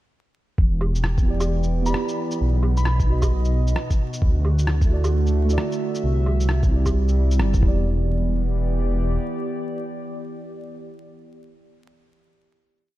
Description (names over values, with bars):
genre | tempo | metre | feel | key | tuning
future garage | 132 BPM | 4/4 | swing 62% on 16ths | E minor | A4 = 441 Hz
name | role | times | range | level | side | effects
warbly tape-like pad | sustained chords | 1.0-11.4 s | B2 to E5 | -29 LUFS | right 1 dB | chorus, built-in reverb, sidechain pumping
dark detuned saw bass | bass | 0.6-9.2 s | E1 to D2 | -20 LUFS | equal | tube saturation, sidechain pumping
electronic kick drum | drums | 0.6-7.7 s | none | -19 LUFS | equal | overdrive, vintage 12-bit sampler grit
electronic woodblock, shaker and rim click | drums | 0.8-7.6 s | none | -31 LUFS | right 1 dB | vintage 12-bit sampler grit
muted felt-like synth keys | accompaniment | 1.2-11.1 s | A3 to D#5 | -30 LUFS | right 3 dB | chorus, sidechain pumping, analog delay
glassy synth bell | melody | 1.9-2.9 s | B5 | -33 LUFS | left 1 dB | chorus, tremolo, vintage 12-bit sampler grit, diffuse ambient delay
room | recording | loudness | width
light reverb | vinyl crackle | -19 LUFS | side -15 dB against mid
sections
0.6-7.9 groove; 7.9-11.5 final chord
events
none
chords
0.6 Em7; 2.4 B; 4.2 Dadd9; 6.0 Cadd9; 7.6 Em7